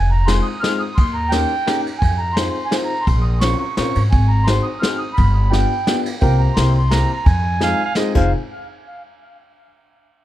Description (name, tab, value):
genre	musette waltz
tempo	171 BPM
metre	3/4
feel	straight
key	F minor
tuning	A4 = 440 Hz
part	mellow accordion	melody	0.0-8.3 s	F5 to F6	-22 LUFS	right 2 dB	tape echo
part	upright bass	bass	0.0-8.3 s	F1 to Bb2	-16 LUFS	equal	none
part	warm upright piano	accompaniment	0.3-8.3 s	Ab3 to C5	-23 LUFS	left 3 dB	none
part	vintage brush drum kit	drums	0.3-8.2 s	crash cymbal, kick drum, ride cymbal, snare drum	-21 LUFS	equal	none
part	clear clarinet	second line	7.6-8.3 s	C5 to F5	-23 LUFS	right 5 dB	none
room	little or no reverb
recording	close, detailed microphones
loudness	-15 LUFS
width	side -14 dB against mid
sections	0.0-8.3 A section; 8.3-9.4 B section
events	none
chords	0.0 Fm7; 1.0 Eb7; 2.0 Fm7; 3.1 Bbmadd9; 4.1 Ab7; 5.2 G7; 6.2 C7sus4; 6.6 C7; 7.3 Fm7; 8.3 N.C.